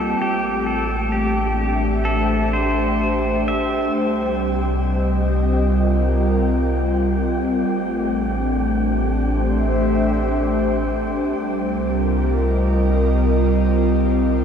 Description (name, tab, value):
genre	ambient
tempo	65 BPM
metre	4/4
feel	straight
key	C dorian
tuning	A4 = 435 Hz
part	pedal steel guitar	melody	0.0-3.9 s	G4 to E5	-25 LUFS	equal	shimmer reverb, diffuse ambient delay
part	airy breathy pad	sustained chords	0.0-14.4 s	G3 to E5	-20 LUFS	equal	chorus, shimmer reverb
part	warm sub bass	bass	0.0-14.4 s	A1 to C2	-22 LUFS	equal	none
part	wind-like tuned noise texture	texture	0.0-14.4 s	G4 to G5	-30 LUFS	right 1 dB	built-in reverb, shimmer reverb
room	wet huge ambient reverb, RT60 7.3 s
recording	cassette tape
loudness	-17 LUFS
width	side -7 dB against mid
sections	0.0-14.4 A section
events	none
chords	0.2 Am7; 4.0 Cm; 7.7 Am7; 11.4 Cm